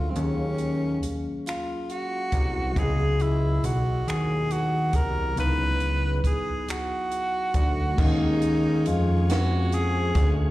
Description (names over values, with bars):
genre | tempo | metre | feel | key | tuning
slow six-eight R&B | 46 BPM (dotted quarters) | 6/8 | straight | unclear | A4 = 442 Hz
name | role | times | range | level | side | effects
warm tenor saxophone | melody | 0.0-10.3 s | C4 to Cb5 | -28 LUFS | equal | slapback echo, tape echo
mellow tine electric piano | accompaniment | 0.0-10.5 s | Gb3 to F5 | -32 LUFS | left 2 dB | lush chorus
fat analog bass | bass | 0.0-10.5 s | Cb2 to F2 | -24 LUFS | equal | none
compact cocktail drum kit | drums | 0.2-10.4 s | crash cymbal, finger snaps, hi-hat, kick drum, snare drum | -26 LUFS | equal | none
tonewheel organ | sustained chords | 8.0-10.5 s | Ab4 to Db6 | -37 LUFS | equal | chorus vibrato, stopped rotary speaker
room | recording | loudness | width
light reverb | live gig heard through the venue's PA, recital hall reverb | -22 LUFS | side -17 dB against mid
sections
0.0-8.0 A section; 8.0-10.5 B section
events
none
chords
0.0 Ebm11; 2.8 Dbm11; 8.0 Eb9sus4